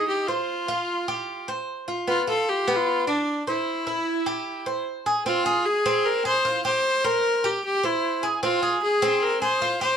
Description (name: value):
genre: latin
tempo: 151 BPM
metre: 4/4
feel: straight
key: F harmonic minor from 5.3 s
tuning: A4 = 441 Hz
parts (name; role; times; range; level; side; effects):
- clear viola; melody; 0.0-10.0 s; D4 to C5; -23 LUFS; left 1 dB; none
- Cuban tres; arpeggios; 0.0-10.0 s; B3 to C5; -26 LUFS; right 2 dB; none
room: moderate studio reverb, RT60 0.8 s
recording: none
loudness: -22 LUFS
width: side -8 dB against mid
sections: 0.0-5.3 A section; 5.3-10.0 B section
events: none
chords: 0.5 Fsus2; 2.1 Bdim; 3.7 C; 5.3 Fm; 6.8 C7; 8.4 Fm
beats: 0.08 | 0.48 0.88 1.28 1.68 | 2.08 2.48 2.88 3.27 | 3.67 4.07 4.47 4.86 | 5.26 5.66 6.05 6.45 | 6.85 7.24 7.64 8.03 | 8.43 8.83 9.22 9.62